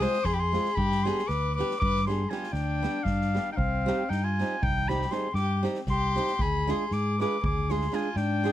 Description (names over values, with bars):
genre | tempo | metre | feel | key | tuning
balkan folk, Balkan wedding band | 235 BPM (eighths) | 11/8 | straight | C harmonic minor | A4 = 439 Hz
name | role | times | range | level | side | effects
clear clarinet | melody | 0.0-8.5 s | F5 to Eb6 | -30 LUFS | left 1 dB | none
warm violin | second line | 0.0-8.5 s | C4 to C5 | -33 LUFS | left 5 dB | none
flamenco guitar | accompaniment | 0.0-8.5 s | G3 to Ab4 | -31 LUFS | right 4 dB | none
fingered electric bass | bass | 0.0-8.5 s | C2 to Ab2 | -28 LUFS | equal | none
street-band drum kit | percussion | 0.0-8.5 s | kick drum, snare drum | -35 LUFS | equal | none
room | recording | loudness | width
little or no reverb | dark, warm production | -25 LUFS | side -12 dB against mid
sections
0.0-8.5 A section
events
none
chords
0.0 Fm; 0.8 G; 3.6 Cm; 6.4 Ddim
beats
0.01 0.27 0.52 | 0.78 1.03 1.29 1.54 1.80 2.05 2.31 2.56 2.82 3.07 3.33 | 3.58 3.84 4.10 4.35 4.61 4.86 5.12 5.37 5.63 5.88 6.14 | 6.39 6.65 6.91 7.16 7.42 7.67 7.93 8.18 8.44